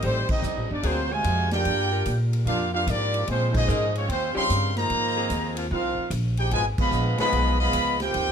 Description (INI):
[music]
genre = jazz, big band swing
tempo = 148 BPM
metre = 4/4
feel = swing 66% on 8ths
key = unclear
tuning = A4 = 441 Hz
[part]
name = clear trumpet section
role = melody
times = 0.0-8.3 s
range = Ab3 to C6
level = -25 LUFS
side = left 1 dB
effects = none
[part]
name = clear trombone section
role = second line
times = 0.0-8.3 s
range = A#2 to G4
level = -30 LUFS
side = right 4 dB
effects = none
[part]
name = clear saxophone section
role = sustained chords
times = 0.0-7.3 s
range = F3 to C5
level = -33 LUFS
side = left 4 dB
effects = none
[part]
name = upright bass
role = bass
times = 0.0-8.3 s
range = G1 to Bb2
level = -26 LUFS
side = equal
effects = none
[part]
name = swinging big-band drum kit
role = drums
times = 0.0-8.3 s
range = crash cymbal, hi-hat, kick drum, ride cymbal, snare drum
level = -33 LUFS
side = equal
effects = none
[sound]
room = light reverb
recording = close, detailed microphones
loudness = -22 LUFS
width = side -7 dB against mid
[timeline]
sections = 0.0-8.3 A section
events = band accent 0.2, 3.5, 6.7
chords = 0.0 Am7b5; 0.8 D7alt; 1.7 Gm7; 3.3 Bbm9; 4.1 Eb9; 4.9 Ab69; 6.5 Db9